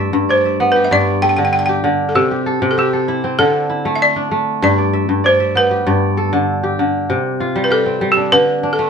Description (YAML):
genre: west african traditional, West African string and xylophone music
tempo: 97 BPM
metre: 4/4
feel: straight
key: C major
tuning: A4 = 438 Hz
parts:
  - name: balafon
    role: melody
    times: 0.0-8.9 s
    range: G4 to G5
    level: -15 LUFS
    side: equal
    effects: none
  - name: kora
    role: arpeggios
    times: 0.0-8.9 s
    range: G2 to E5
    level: -16 LUFS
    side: equal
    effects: none
room: light reverb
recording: band playing live in one room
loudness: -13 LUFS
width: side -6 dB against mid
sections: 0.0-7.1 A section; 7.1-8.9 B section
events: none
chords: 0.0 G; 2.1 C; 3.4 D5; 4.6 G; 7.1 C5; 8.3 D5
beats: 0.29 0.91 1.53 | 2.15 2.77 3.38 4.00 | 4.62 5.24 5.86 6.47 | 7.09 7.71 8.32